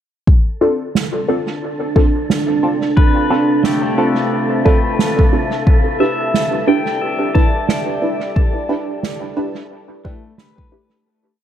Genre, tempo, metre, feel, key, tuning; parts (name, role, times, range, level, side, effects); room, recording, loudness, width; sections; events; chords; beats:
ambient dub; 89 BPM; 4/4; swing 57% on 16ths; D dorian; A4 = 440 Hz
deep dark ambient pad; sustained chords; 1.5-11.1 s; C4 to F5; -20 LUFS; right 2 dB; chorus, built-in reverb
electronic kick drum; drums; 0.3-10.7 s; -13 LUFS; equal
wind-like tuned noise texture; texture; 0.9-11.1 s; A4; -28 LUFS; equal; built-in reverb
filtered dub chord stab; stabs; 0.6-11.0 s; C4 to B4; -20 LUFS; right 1 dB; phaser, lush chorus, dub echo
snare drum; drums; 1.0-10.5 s; -23 LUFS; right 5 dB; dub echo
pedal steel guitar; arpeggios; 3.0-11.4 s; A3 to A5; -23 LUFS; left 4 dB; tape echo
light reverb, digital ambience; dark, warm production; -14 LUFS; side -10 dB against mid
0.3-11.1 groove
fade-out 7.5-11.1
0.3 Dm7; 5.7 Em7
| 0.27 0.95 1.62 2.29 | 2.97 3.64 4.32 4.99 | 5.67 6.34 7.01 7.69 | 8.36 9.04 9.71 10.38